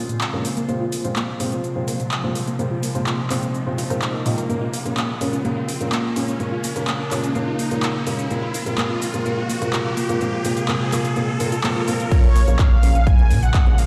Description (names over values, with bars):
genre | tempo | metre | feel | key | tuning
progressive house | 126 BPM | 4/4 | straight | Bb minor | A4 = 439 Hz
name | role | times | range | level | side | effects
evolving wavetable pad | sustained chords | 0.0-13.9 s | C3 to F4 | -30 LUFS | equal | chorus, built-in reverb, phaser, sidechain pumping
glassy wavetable pluck | arpeggios | 0.0-13.8 s | Bb2 to Bb4 | -30 LUFS | equal | chorus, sidechain pumping, tape echo
saturated sub bass | bass | 0.0-13.9 s | Ab1 to Bb2 | -26 LUFS | equal | none
riser | sound effects | 0.1-12.1 s | none | -34 LUFS | equal | none
big-room dance drum kit | drums | 0.1-13.9 s | crash cymbal, handclaps, hi-hat, shaker | -30 LUFS | equal | overdrive, sidechain pumping on hats, high-pass filter on hats, sidechain pumping on perc, high-pass filter on perc, high-pass filter on snare, sidechain pumping on cymbals, high-pass filter on cymbals
felt-muted upright piano | stabs | 0.3-13.8 s | Bb2 to Eb5 | -28 LUFS | equal | sidechain pumping, low-pass filter, tape echo
unison lead | melody | 12.1-13.9 s | Db5 to Ab5 | -29 LUFS | equal | analog chorus, cassette tape, sidechain pumping, tape echo
electronic kick drum | drums | 12.1-13.6 s | none | -17 LUFS | equal | overdrive
room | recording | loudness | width
moderate lush hall reverb, RT60 1.9 s | played on a big sound system in a bare room, stone room reverb | -21 LUFS | mono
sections
0.0-12.1 A section; 12.1-13.9 B section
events
build-up 0.0-12.1; filter sweep on synth arpeggio sound 0.0-12.1; filter sweep on felt piano 0.0-12.1; riser 0.1-12.1; drop 12.1-13.9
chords
0.0 Bbm7; 0.7 Fm/Bb; 4.5 Bbm7; 8.3 Fm/Bb; 12.1 Bbm7